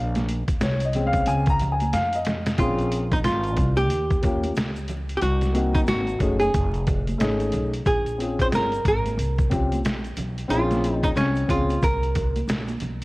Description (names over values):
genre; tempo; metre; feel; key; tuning
hip hop, jazz-hop; 91 BPM; 4/4; swing 61% on 16ths; Bb minor; A4 = 440 Hz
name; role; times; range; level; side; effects
dark upright piano; accompaniment; 0.0-11.7 s; Ab3 to Bb5; -26 LUFS; left 2 dB; none
upright bass; bass; 0.0-13.0 s; F1 to F2; -26 LUFS; equal; none
trip hop sampler-style drum kit; drums; 0.2-13.0 s; hi-hat, kick drum, snare drum; -26 LUFS; equal; none
congas and egg shaker; percussion; 0.2-13.0 s; none; -34 LUFS; right 2 dB; none
archtop guitar, miked and amplified; melody; 2.6-12.4 s; Db4 to C5; -25 LUFS; equal; none
room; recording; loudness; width
light reverb; worn, warbling old tape, cassette tape, vinyl crackle, warbly pitch drift; -20 LUFS; side -22 dB against mid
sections
0.0-2.6 A section; 2.6-13.0 B section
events
upright piano solo 0.0-2.6; drum fill 1.9-2.6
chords
0.0 Bbm9; 3.9 Eb7; 5.2 Cm7b5; 6.5 F7alt; 7.9 Bbm9